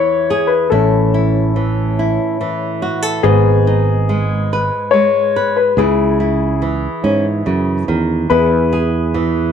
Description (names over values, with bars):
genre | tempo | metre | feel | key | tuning
acoustic folk-pop ballad | 71 BPM | 3/4 | straight | unclear | A4 = 439 Hz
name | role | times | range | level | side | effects
warm upright piano | melody | 0.0-9.5 s | B3 to C#5 | -16 LUFS | left 8 dB | none
nylon-string guitar | accompaniment | 0.0-9.5 s | E2 to B4 | -18 LUFS | right 3 dB | none
fretless electric bass | bass | 0.7-9.5 s | G#1 to G#2 | -16 LUFS | right 2 dB | none
room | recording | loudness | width
moderate spring reverb, RT60 1.4 s, small room reverb | none | -13 LUFS | side -8 dB against mid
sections
0.0-9.5 A section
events
none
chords
0.0 E; 0.7 A; 3.2 G#m; 5.8 C#m; 8.3 E